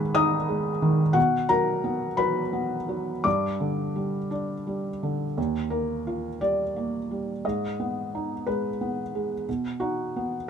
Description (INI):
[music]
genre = neoclassical minimalist piano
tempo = 58 BPM (dotted quarters)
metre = 6/8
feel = rubato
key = unclear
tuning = A4 = 440 Hz
[part]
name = felt-muted upright piano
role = solo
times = 0.0-10.5 s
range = Eb2 to Eb6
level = -24 LUFS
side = equal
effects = none
[sound]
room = light reverb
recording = minimal, uncompressed stereo recording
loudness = -24 LUFS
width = side -7 dB against mid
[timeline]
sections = 0.0-5.4 A section; 5.4-10.5 B section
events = none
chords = 0.0 Abm; 1.2 B5; 3.2 G5; 5.4 Ebadd9; 7.4 Abm; 9.5 B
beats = 0.15 | 1.16 2.20 | 3.25 4.31 | 5.37 6.41 | 7.44 8.46 | 9.47 10.48